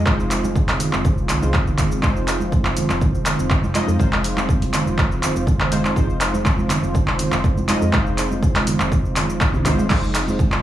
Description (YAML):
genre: afro house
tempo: 122 BPM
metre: 4/4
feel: straight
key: F minor pentatonic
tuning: A4 = 440 Hz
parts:
  - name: warm analog pad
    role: sustained chords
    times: 0.0-10.6 s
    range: F3 to C5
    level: -27 LUFS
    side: right 1 dB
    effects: chorus, sidechain pumping
  - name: warm analog keys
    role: stabs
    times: 0.0-10.6 s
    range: Ab3 to Eb5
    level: -26 LUFS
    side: equal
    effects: chorus, sidechain pumping, tape echo
  - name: woody FM bass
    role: bass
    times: 0.0-10.5 s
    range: Eb1 to F2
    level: -26 LUFS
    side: equal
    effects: sidechain pumping
  - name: deep house drum kit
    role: drums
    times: 0.1-10.6 s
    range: crash cymbal, handclaps, hi-hat, shaker, toms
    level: -23 LUFS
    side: equal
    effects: overdrive, studio ambience
  - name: electronic kick drum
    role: drums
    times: 0.1-10.5 s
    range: none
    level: -20 LUFS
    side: equal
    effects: overdrive, studio ambience
  - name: congas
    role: percussion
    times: 0.1-10.6 s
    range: none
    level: -26 LUFS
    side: right 3 dB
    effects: none
room: light reverb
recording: dry, gritty hardware recording, transformer saturation, small room ambience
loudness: -17 LUFS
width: side -12 dB against mid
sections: 0.0-10.6 A section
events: drum fill 9.5-9.9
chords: 0.0 Fm7